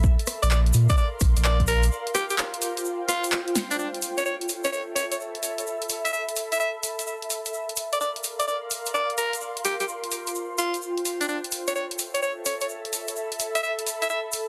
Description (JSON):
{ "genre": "UK garage, two-step garage", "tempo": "128 BPM", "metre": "4/4", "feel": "swing 66% on 16ths", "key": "unclear", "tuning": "A4 = 440 Hz", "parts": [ { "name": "saturated sub bass", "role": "bass", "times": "0.0-1.9 s", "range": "Bb1 to Bb2", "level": "-23 LUFS", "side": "equal", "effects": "tube saturation" }, { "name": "electronic kick drum", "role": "drums", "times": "0.0-1.7 s", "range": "none", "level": "-24 LUFS", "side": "equal", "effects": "none" }, { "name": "egg shaker", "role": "percussion", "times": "0.0-14.5 s", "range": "none", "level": "-34 LUFS", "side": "equal", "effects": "none" }, { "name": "ethereal airy pad", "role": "texture", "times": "0.0-14.5 s", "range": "F4 to C6", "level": "-35 LUFS", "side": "equal", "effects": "ensemble chorus, built-in reverb, sidechain pumping" }, { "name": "punchy analog drum machine", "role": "drums", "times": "0.2-14.5 s", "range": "handclaps, hi-hat, rim click, snare drum", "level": "-32 LUFS", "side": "equal", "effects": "overdrive" }, { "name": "raspy alto saxophone", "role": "melody", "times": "0.4-14.2 s", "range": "D4 to E5", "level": "-30 LUFS", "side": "equal", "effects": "tape echo" } ], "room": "moderate lush hall reverb, RT60 2.2 s", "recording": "dense, heavily limited modern master", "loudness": "-26 LUFS", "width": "mono", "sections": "0.0-3.8 A section; 3.8-14.5 B section", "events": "break 1.9-3.8; drum fill 3.6; band accent 3.6", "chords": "0.0 Bbsus2; 1.9 Fsus2; 3.8 Asus2; 7.3 Bbsus2; 9.4 Fsus2; 11.3 Asus2" }